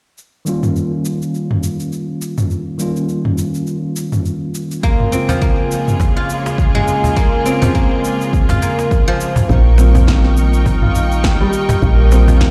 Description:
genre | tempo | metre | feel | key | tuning
organic downtempo | 103 BPM | 4/4 | swing 57% on 16ths | unclear | A4 = 439 Hz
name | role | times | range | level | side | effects
deep house drum kit | drums | 0.2-12.5 s | shaker, snare drum, toms | -23 LUFS | equal | overdrive
tine electric piano | accompaniment | 0.5-12.5 s | Db3 to F4 | -24 LUFS | equal | sidechain pumping, low-pass filter, digital delay
bright symphonic string section | sustained chords | 4.8-12.5 s | Db3 to Db6 | -25 LUFS | equal | vintage 12-bit sampler grit, sidechain pumping
guzheng | arpeggios | 4.8-12.5 s | F3 to F4 | -21 LUFS | equal | low-pass filter, digital delay
electronic kick drum | drums | 4.8-12.5 s | none | -18 LUFS | equal | overdrive
cajon | percussion | 5.3-12.4 s | none | -23 LUFS | equal | none
woody FM bass | bass | 9.5-12.5 s | Bb1 | -14 LUFS | equal | none
room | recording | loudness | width
light reverb | played on a big sound system in a bare room, large studio reverb | -15 LUFS | mono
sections
0.2-9.5 A section; 9.5-12.5 B section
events
filter sweep on tine electric piano 0.2-9.5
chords
0.2 Eb7; 4.8 Bbm7; 9.5 Eb7/Bb

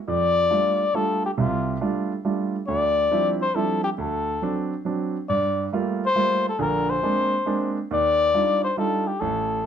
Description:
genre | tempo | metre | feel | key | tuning
jazz | 138 BPM | 3/4 | swing 66% on 8ths | D minor | A4 = 441 Hz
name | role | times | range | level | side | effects
trumpet with cup mute | melody | 0.1-9.7 s | F4 to D5 | -22 LUFS | left 4 dB | none
warm grand piano | accompaniment | 0.1-9.6 s | A1 to F4 | -25 LUFS | right 4 dB | none
room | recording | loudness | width
moderate club reverb, RT60 0.6 s | none | -21 LUFS | side -8 dB against mid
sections
0.0-2.7 A section; 2.7-9.7 B section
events
none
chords
0.1 F69; 2.7 Dm11; 4.0 D7; 5.3 Gm9; 6.6 Bb9; 7.9 Ebmaj9

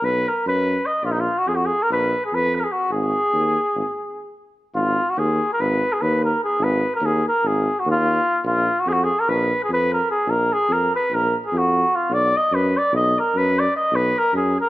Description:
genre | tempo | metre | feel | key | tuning
balkan folk | 293 BPM (eighths) | 9/8 | straight | Ab dorian sharp4 | A4 = 440 Hz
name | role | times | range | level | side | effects
clear flugelhorn | melody | 0.0-14.7 s | Eb4 to Eb5 | -19 LUFS | equal | none
clear tuba | bass | 0.0-14.6 s | Ab1 to F#2 | -24 LUFS | equal | none
room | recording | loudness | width
moderate recital hall reverb, RT60 1.5 s | none | -18 LUFS | side -16 dB against mid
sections
0.0-4.7 A section; 4.7-14.7 A section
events
stop 3.8-4.7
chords
0.0 B5; 1.0 Bb5; 2.9 Ab5; 8.4 Bb5; 12.1 B5

